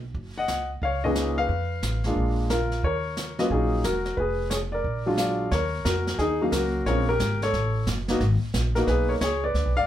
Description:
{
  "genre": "jazz piano trio",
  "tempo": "179 BPM",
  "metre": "4/4",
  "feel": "swing 65% on 8ths",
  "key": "Eb minor",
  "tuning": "A4 = 440 Hz",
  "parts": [
    { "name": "upright bass", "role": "bass", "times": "0.0-9.9 s", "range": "Fb1 to F2", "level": "-27 LUFS", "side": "equal", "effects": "none" },
    { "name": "jazz brush drum kit", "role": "drums", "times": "0.1-9.9 s", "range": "brushed snare drum, hi-hat, kick drum, snare drum", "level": "-32 LUFS", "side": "right 2 dB", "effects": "none" },
    { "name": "warm grand piano", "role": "melody", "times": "0.4-9.9 s", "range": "Bb2 to Gb5", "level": "-25 LUFS", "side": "left 1 dB", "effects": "none" }
  ],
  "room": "moderate studio ambience, RT60 0.5 s",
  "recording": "heard from further back in the room",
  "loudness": "-23 LUFS",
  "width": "side -11 dB against mid",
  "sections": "0.0-5.5 A section; 5.5-9.9 A section",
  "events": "none",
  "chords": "0.1 Gb69; 1.5 F(b5, no3); 2.2 Bb7; 2.8 Ebm7; 4.2 Fdim; 4.8 Bb7b13; 5.5 Ebm7; 6.9 Bbm7; 7.5 A6; 8.2 Abm"
}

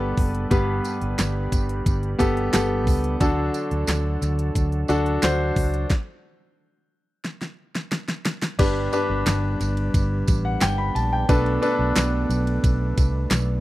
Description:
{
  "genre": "piano-driven pop",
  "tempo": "89 BPM",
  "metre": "4/4",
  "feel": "straight",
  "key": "G major",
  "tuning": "A4 = 439 Hz",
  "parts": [
    { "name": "clear concert grand piano", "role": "accompaniment", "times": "0.0-13.6 s", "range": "G2 to B5", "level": "-24 LUFS", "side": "left 1 dB", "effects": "none" },
    { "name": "tonewheel organ", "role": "sustained chords", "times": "0.0-13.6 s", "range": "F#3 to B4", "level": "-31 LUFS", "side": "right 1 dB", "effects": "chorus vibrato, lush chorus" },
    { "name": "vintage muted fingered electric bass", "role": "bass", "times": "0.0-13.6 s", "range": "F#1 to D2", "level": "-24 LUFS", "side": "equal", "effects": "none" },
    { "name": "pop drum kit", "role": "drums", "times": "0.2-13.5 s", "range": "crash cymbal, handclaps, hi-hat, kick drum, ride cymbal, snare drum", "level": "-22 LUFS", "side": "equal", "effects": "none" },
    { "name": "tambourine", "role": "percussion", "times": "0.5-13.5 s", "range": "none", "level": "-37 LUFS", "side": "right 9 dB", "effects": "none" }
  ],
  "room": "little or no reverb",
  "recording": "dry, close 1970s-style studio recording",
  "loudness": "-20 LUFS",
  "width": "side -16 dB against mid",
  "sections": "0.0-8.6 A section; 8.6-13.6 B section",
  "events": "stop 5.9-8.6; drum fill 7.2-8.6",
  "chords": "0.0 Gadd9; 3.2 D; 8.6 G; 11.3 Bm7"
}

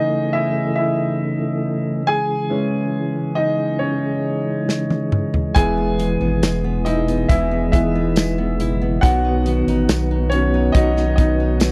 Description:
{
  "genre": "pop ballad",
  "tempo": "69 BPM",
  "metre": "4/4",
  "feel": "straight",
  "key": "E major",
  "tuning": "A4 = 443 Hz",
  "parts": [
    { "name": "warm baby grand piano", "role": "accompaniment", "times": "0.0-11.7 s", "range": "D#3 to G#5", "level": "-23 LUFS", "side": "equal", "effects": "none" },
    { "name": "mellow tonewheel organ", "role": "sustained chords", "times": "0.0-11.7 s", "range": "B2 to F#4", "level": "-26 LUFS", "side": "equal", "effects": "chorus vibrato, fast rotary speaker" },
    { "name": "natural country drum kit", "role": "drums", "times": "4.7-11.7 s", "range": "hi-hat, kick drum, snare drum, toms", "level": "-20 LUFS", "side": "equal", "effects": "none" },
    { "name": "nylon-string guitar", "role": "arpeggios", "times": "5.6-11.7 s", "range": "E2 to F#4", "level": "-27 LUFS", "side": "equal", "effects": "none" },
    { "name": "saturated sub bass", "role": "bass", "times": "5.6-11.7 s", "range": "E1 to B1", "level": "-24 LUFS", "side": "equal", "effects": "none" },
    { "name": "tambourine", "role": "percussion", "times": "6.4-11.7 s", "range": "none", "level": "-36 LUFS", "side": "equal", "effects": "none" }
  ],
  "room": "little or no reverb",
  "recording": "dry, close 1970s-style studio recording",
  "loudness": "-19 LUFS",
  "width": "mono",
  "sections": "0.0-11.7 A section",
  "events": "grand piano solo 0.0-11.7; drum fill 4.7-5.6",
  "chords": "0.0 A; 2.1 C#m; 5.6 E; 9.0 B"
}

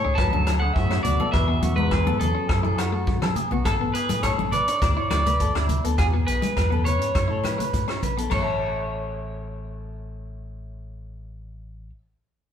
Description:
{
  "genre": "highlife guitar band",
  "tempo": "103 BPM",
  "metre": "4/4",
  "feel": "straight",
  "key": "A major",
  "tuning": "A4 = 436 Hz",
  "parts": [
    { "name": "electric guitar at the edge of break-up", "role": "melody", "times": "0.0-11.9 s", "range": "G#4 to A5", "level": "-27 LUFS", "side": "equal", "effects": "spring reverb" },
    { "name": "trombone with metal mute", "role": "second line", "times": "0.0-3.3 s", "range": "F#2 to F#3", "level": "-30 LUFS", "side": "left 3 dB", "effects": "none" },
    { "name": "clean electric guitar", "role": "accompaniment", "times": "0.0-8.5 s", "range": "G#3 to E4", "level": "-32 LUFS", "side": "left 6 dB", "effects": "none" },
    { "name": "clean electric guitar", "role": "arpeggios", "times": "0.0-12.0 s", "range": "E4 to A5", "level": "-30 LUFS", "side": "equal", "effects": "none" },
    { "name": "deep dub fingered electric bass", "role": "bass", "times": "0.0-11.9 s", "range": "A1 to F#3", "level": "-26 LUFS", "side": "equal", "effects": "none" },
    { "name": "vintage drum kit", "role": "drums", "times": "0.2-8.5 s", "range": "crash cymbal, hi-hat, kick drum, rim click", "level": "-27 LUFS", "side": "equal", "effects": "none" },
    { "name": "agogo bells", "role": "percussion", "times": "0.2-8.5 s", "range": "none", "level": "-37 LUFS", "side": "left 7 dB", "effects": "none" },
    { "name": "congas", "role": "percussion", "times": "0.3-8.6 s", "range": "none", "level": "-32 LUFS", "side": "left 2 dB", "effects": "none" }
  ],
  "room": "wet stone room reverb, RT60 1.2 s",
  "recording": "band playing live in one room",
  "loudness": "-20 LUFS",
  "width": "side -8 dB against mid",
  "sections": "0.0-3.7 A section; 3.7-8.3 B section; 8.3-10.6 C section",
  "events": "drum fill 3.1-3.7",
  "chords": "0.2 D; 1.3 Eadd9; 2.5 F#m7; 3.7 Amaj7; 4.8 Dsus2; 6.0 Eadd9; 7.1 F#m7 (rootless); 8.3 A"
}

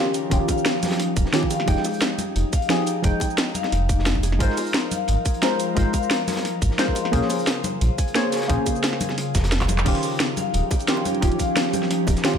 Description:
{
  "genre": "liquid drum and bass",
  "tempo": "176 BPM",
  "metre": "4/4",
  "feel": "swing 53% on 16ths",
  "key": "unclear",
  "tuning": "A4 = 440 Hz",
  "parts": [
    { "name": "deep mellow chord stab", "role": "accompaniment", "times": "0.0-12.4 s", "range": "Eb3 to G5", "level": "-25 LUFS", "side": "equal", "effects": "chorus, cassette tape, digital delay" },
    { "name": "glassy FM pad", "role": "sustained chords", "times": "0.0-12.4 s", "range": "Db3 to Bb4", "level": "-29 LUFS", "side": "right 1 dB", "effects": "ensemble chorus, built-in reverb" },
    { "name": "concert harp", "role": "arpeggios", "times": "0.0-12.4 s", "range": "Eb4 to Ab5", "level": "-30 LUFS", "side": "left 7 dB", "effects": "digital delay" },
    { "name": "crunchy breakbeat drum kit", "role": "drums", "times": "0.1-12.3 s", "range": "hi-hat, snare drum", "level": "-34 LUFS", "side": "equal", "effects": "high-pass filter on hats, studio reverb, high-pass filter on snare, high-pass filter on room" },
    { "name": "drum and bass drum kit", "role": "drums", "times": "0.1-12.3 s", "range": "crash cymbal, handclaps, hi-hat, shaker, snare drum", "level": "-25 LUFS", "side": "equal", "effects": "studio reverb" },
    { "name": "sub bass with octave", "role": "bass", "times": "0.3-12.2 s", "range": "Eb1 to Bb1", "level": "-22 LUFS", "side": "equal", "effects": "none" },
    { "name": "electronic kick drum", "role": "drums", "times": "0.3-12.4 s", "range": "none", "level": "-23 LUFS", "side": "equal", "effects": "studio reverb" },
    { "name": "bongos and congas", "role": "percussion", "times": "0.5-12.1 s", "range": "none", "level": "-32 LUFS", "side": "left 2 dB", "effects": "none" }
  ],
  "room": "light reverb, studio ambience",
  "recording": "none",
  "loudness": "-19 LUFS",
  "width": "side -8 dB against mid",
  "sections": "0.0-9.9 A section; 9.9-12.4 A section",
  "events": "drop 0.0-9.9, 9.9-12.4; drum fill 9.6; band accent 9.8",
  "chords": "0.0 Eb9; 1.7 Fm9; 4.4 Ab69; 7.1 Bbm9; 9.9 Eb9"
}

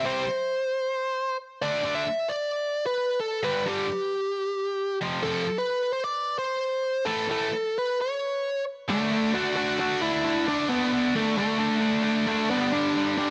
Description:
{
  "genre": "rock",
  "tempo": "132 BPM",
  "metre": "4/4",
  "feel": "straight",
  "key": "unclear",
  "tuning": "A4 = 440 Hz",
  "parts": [
    { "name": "bluesy overdriven lead guitar", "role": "melody", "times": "0.0-13.3 s", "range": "A3 to E5", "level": "-28 LUFS", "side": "equal", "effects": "distortion, digital delay" },
    { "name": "heavy high-gain guitar", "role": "riff", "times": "0.0-13.3 s", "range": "F2 to D4", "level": "-30 LUFS", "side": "equal", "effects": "distortion" }
  ],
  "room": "light reverb",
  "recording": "none",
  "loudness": "-27 LUFS",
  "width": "mono",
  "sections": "0.0-8.9 A section; 8.9-13.3 B section",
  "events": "none",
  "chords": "0.0 C5; 1.6 D5; 3.4 G5; 5.0 F5; 7.1 A; 8.9 D5; 12.5 G5"
}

